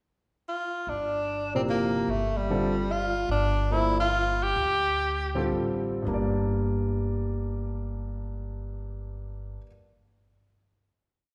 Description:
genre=jazz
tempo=104-148 BPM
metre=3/4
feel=swing 66% on 8ths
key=G dorian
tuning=A4 = 440 Hz
part: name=breathy tenor saxophone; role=melody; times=0.5-5.5 s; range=G3 to G4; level=-29 LUFS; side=equal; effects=none
part: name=upright bass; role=bass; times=0.9-9.6 s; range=G1 to D2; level=-34 LUFS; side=equal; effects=none
part: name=warm concert grand piano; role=accompaniment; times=1.5-9.7 s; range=G2 to D5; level=-33 LUFS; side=equal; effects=none
room=wet recital hall reverb, RT60 1.7 s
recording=recorded in a church or concert hall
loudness=-28 LUFS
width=mono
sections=0.0-0.9 pickup bar; 0.9-6.1 A section; 6.1-9.6 final chord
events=slowing down 3.3-6.1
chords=0.0 N.C.; 0.9 G9sus4; 6.1 Gm

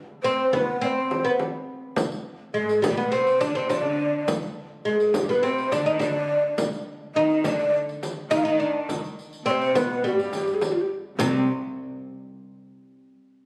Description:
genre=Arabic maqam ensemble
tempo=104 BPM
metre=4/4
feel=straight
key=unclear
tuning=A4 = 440 Hz
part: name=breathy mellow ney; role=melody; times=0.2-11.4 s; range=C4 to F5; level=-27 LUFS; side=equal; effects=none
part: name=oud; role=second line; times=0.2-11.5 s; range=C3 to Eb4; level=-29 LUFS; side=equal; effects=none
part: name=frame drum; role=percussion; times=0.5-11.5 s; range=none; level=-32 LUFS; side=equal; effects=none
part: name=riq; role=percussion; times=2.0-11.5 s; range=none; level=-40 LUFS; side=equal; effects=none
part: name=rich studio cello section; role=second line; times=2.6-11.5 s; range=C2 to Eb3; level=-37 LUFS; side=equal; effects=none
room=moderate recital hall reverb, RT60 1.4 s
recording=recorded on a phone in the room, studio reverb, compression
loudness=-24 LUFS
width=mono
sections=0.0-11.2 A section; 11.2-13.5 B section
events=none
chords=none

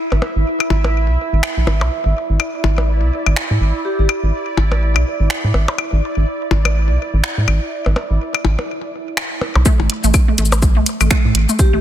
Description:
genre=minimal techno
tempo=124 BPM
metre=4/4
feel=swing 58% on 16ths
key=unclear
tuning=A4 = 437 Hz
part: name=bubbling stepped-filter texture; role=texture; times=0.0-9.7 s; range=E4 to E5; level=-24 LUFS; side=right 2 dB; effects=chorus, built-in reverb, sidechain pumping
part: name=rubbery square bass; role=bass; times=0.1-11.8 s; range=A1 to A2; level=-15 LUFS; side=equal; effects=sidechain pumping
part: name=percussion blips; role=percussion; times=0.1-11.1 s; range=none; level=-22 LUFS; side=left 5 dB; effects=ping-pong delay
part: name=house drum kit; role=drums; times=1.4-11.7 s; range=finger snaps, hi-hat, shaker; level=-23 LUFS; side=equal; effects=overdrive
part: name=vibraphone with medium mallets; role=melody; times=3.8-4.1, 11.6-11.8 s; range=G4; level=-23 LUFS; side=left 2 dB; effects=ping-pong delay
part: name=resonant blip pluck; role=riff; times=9.7-11.8 s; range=A3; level=-21 LUFS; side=right 2 dB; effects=phaser, sidechain pumping, ping-pong delay
part: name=electronic kick drum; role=drums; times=9.7-11.7 s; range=none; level=-13 LUFS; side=equal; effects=overdrive
room=light reverb, digital ambience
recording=dense, heavily limited modern master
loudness=-14 LUFS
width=side -11 dB against mid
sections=0.0-9.7 A section; 9.7-11.8 B section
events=drop 9.7-11.8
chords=0.0 A5; 9.7 N.C.

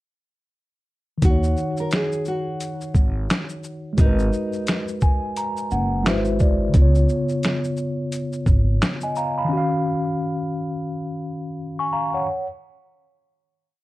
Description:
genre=lo-fi hip hop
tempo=87 BPM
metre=4/4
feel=swing 61% on 16ths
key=Eb minor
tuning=A4 = 441 Hz
part: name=nylon-string guitar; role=melody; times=1.2-4.9 s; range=Eb4 to Bb4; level=-29 LUFS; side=equal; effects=tape echo, plate reverb
part: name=mellow tine electric piano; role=accompaniment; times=1.2-12.5 s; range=Db3 to Db6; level=-24 LUFS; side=left 1 dB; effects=fast stereo tremolo, plate reverb
part: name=upright bass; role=bass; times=1.2-8.8 s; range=Gb1 to Eb2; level=-20 LUFS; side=equal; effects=none
part: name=boom bap sampler-style drum kit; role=drums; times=1.2-9.4 s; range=finger snaps, hi-hat, kick drum, shaker, snare drum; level=-19 LUFS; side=equal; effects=none
room=moderate studio reverb, RT60 0.6 s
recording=cassette tape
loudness=-20 LUFS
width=side -17 dB against mid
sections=1.2-12.3 A section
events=tine electric piano fill 4.7-6.7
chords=1.2 Ebm7; 4.0 Abm9; 6.1 Ab7alt; 6.7 Db7; 9.5 Ebm9

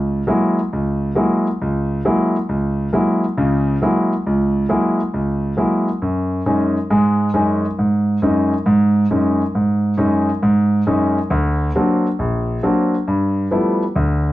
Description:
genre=jazz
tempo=136 BPM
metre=4/4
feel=swing 66% on 8ths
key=F# mixolydian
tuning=A4 = 440 Hz
part: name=warm concert grand piano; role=solo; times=0.0-14.3 s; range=A#1 to E4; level=-15 LUFS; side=equal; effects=none
room=moderate studio reverb, RT60 0.8 s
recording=none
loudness=-15 LUFS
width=side -16 dB against mid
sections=0.0-13.1 A section; 13.1-14.3 B section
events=none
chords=0.0 F#9; 6.0 C#sus2/F#; 11.3 Daug7; 13.1 G13

